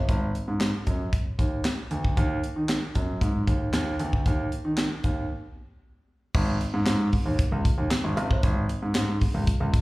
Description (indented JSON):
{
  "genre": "early-eighties boogie funk",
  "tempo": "115 BPM",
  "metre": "4/4",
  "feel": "straight",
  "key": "unclear",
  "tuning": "A4 = 437 Hz",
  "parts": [
    { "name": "warm baby grand piano", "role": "bass", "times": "0.0-9.7 s", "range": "F#1 to D#3", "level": "-27 LUFS", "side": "equal", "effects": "none" },
    { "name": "tight funk drum kit", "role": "drums", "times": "0.1-9.8 s", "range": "crash cymbal, handclaps, hi-hat, kick drum, snare drum", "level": "-25 LUFS", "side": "equal", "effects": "none" }
  ],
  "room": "little or no reverb",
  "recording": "live gig heard through the venue's PA, club reverb",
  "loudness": "-23 LUFS",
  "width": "side -20 dB against mid",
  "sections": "0.0-6.3 A section; 6.3-9.8 B section",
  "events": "break 5.3-6.3",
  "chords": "none",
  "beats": "| 0.09 0.61 1.13 1.65 | 2.17 2.69 3.22 3.74 | 4.26 4.78 5.30 5.83 | 6.35 6.87 7.39 7.91 | 8.43 8.96 9.48"
}